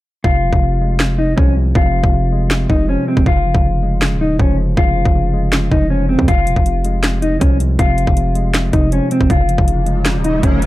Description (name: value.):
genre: hip hop, trap.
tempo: 159 BPM.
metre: 4/4.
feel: half-time.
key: F minor.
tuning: A4 = 440 Hz.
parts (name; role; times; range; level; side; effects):
mellow electric guitar; melody; 0.2-10.6 s; C4 to F4; -19 LUFS; left 1 dB; none.
tine electric piano; accompaniment; 0.2-10.7 s; C3 to Ab3; -20 LUFS; equal; none.
hard-hitting 808-style bass; bass; 0.2-10.7 s; Eb1 to F2; -17 LUFS; equal; none.
trap drum kit; drums; 0.2-10.7 s; finger snaps, hi-hat, kick drum, snare drum; -15 LUFS; equal; none.
riser; sound effects; 9.7-10.7 s; none; -25 LUFS; equal; none.
room: little or no reverb.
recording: dark, warm production.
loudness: -12 LUFS.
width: side -17 dB against mid.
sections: 0.2-10.7 A section.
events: hi-hats muted 0.2-6.3; riser 9.7-10.7.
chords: 0.2 Fm; 3.3 Db; 6.3 Fm; 9.3 Db.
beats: | 0.24 0.62 1.00 1.38 | 1.75 2.13 2.51 2.88 | 3.26 3.64 4.02 4.39 | 4.77 5.15 5.53 5.90 | 6.28 6.66 7.04 7.41 | 7.79 8.17 8.54 8.92 | 9.30 9.68 10.05 10.43.